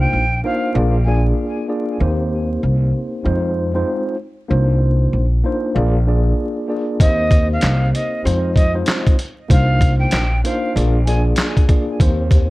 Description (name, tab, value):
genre	hip hop, boom-bap hip-hop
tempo	96 BPM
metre	4/4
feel	swing 62% on 16ths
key	unclear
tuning	A4 = 441 Hz
part	breathy bright jazz flute	melody	0.0-1.2, 7.0-11.2 s	Eb5 to Ab5	-23 LUFS	right 1 dB	high-pass filter, low-pass filter, ping-pong delay
part	mellow tine electric piano	accompaniment	0.0-12.5 s	Ab3 to D5	-21 LUFS	equal	medium stereo tremolo, high-pass filter, low-pass filter
part	upright bass	bass	0.0-12.5 s	Bb1 to F2	-17 LUFS	equal	none
part	dusty soul sampler-style drum kit	drums	7.0-12.5 s	handclaps, hi-hat, kick drum, snare drum	-15 LUFS	equal	none
room	light reverb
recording	worn, warbling old tape, cassette tape, vinyl crackle, warbly pitch drift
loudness	-15 LUFS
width	side -19 dB against mid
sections	0.0-12.5 A section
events	none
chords	0.0 Cm11; 0.8 Bb7; 2.0 Eb6; 3.3 Fm7; 4.5 Cm11; 5.8 Bb7; 7.0 Eb6; 8.3 Fm7; 9.5 Cm11; 10.8 Bb7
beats	0.13 0.75 1.38 | 2.00 2.63 3.25 3.88 | 4.50 5.13 5.75 6.38 | 7.00 7.63 8.25 8.88 | 9.50 10.13 10.75 11.38 | 12.00